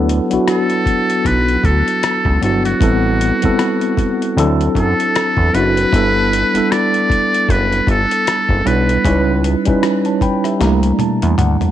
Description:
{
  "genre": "R&B, neo-soul",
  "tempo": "77 BPM",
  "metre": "4/4",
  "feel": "swing 58% on 16ths",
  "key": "unclear",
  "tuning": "A4 = 440 Hz",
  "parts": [
    { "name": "tine electric piano", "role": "accompaniment", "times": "0.0-11.7 s", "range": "E#3 to B5", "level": "-16 LUFS", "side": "equal", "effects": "medium stereo tremolo" },
    { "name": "fat analog bass", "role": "bass", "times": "0.0-11.6 s", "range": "F#1 to F#2", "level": "-17 LUFS", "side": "equal", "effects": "none" },
    { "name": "dusty soul sampler-style drum kit", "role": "drums", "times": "0.1-11.7 s", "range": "hi-hat, kick drum, rim click, snare drum, toms", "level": "-20 LUFS", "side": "left 2 dB", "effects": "none" },
    { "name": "trumpet with metal mute", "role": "melody", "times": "0.5-9.4 s", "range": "F#4 to D5", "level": "-18 LUFS", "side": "equal", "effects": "tape echo" }
  ],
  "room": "light reverb",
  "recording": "1960s-style stereo",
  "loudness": "-12 LUFS",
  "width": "side -12 dB against mid",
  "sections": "0.0-11.7 A section",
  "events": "tine electric piano fill 9.8-11.7; drum fill 10.6-11.7",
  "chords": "0.0 D6; 2.8 Am7; 4.4 D7; 5.9 G6; 9.0 C#m7b5; 10.6 C13"
}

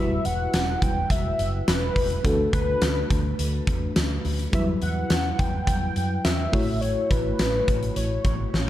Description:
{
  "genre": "1980s-style pop",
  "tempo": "105 BPM",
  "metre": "4/4",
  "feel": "straight",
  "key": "unclear",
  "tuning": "A4 = 440 Hz",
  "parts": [
    { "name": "warm velvety synth lead", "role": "melody", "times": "0.0-8.7 s", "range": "A4 to G5", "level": "-28 LUFS", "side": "left 1 dB", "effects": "chorus, shimmer reverb" },
    { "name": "FM electric piano with tremolo", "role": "accompaniment", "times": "0.0-8.7 s", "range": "F#3 to C#5", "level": "-30 LUFS", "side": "left 1 dB", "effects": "shimmer reverb" },
    { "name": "woody fretless electric bass", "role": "bass", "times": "0.0-8.7 s", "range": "E1 to F#2", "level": "-27 LUFS", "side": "equal", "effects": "lush chorus" },
    { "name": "huge arena drum kit", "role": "drums", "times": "0.2-8.7 s", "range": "hi-hat, kick drum, snare drum, tambourine", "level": "-25 LUFS", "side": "equal", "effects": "none" }
  ],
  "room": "light reverb, small room ambience",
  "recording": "dark, warm production",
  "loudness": "-21 LUFS",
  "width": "side -13 dB against mid",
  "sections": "0.0-8.7 A section",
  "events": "drum fill 8.5",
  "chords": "0.0 Emadd9; 2.2 Bm7/D; 4.5 Emadd9; 6.5 A6"
}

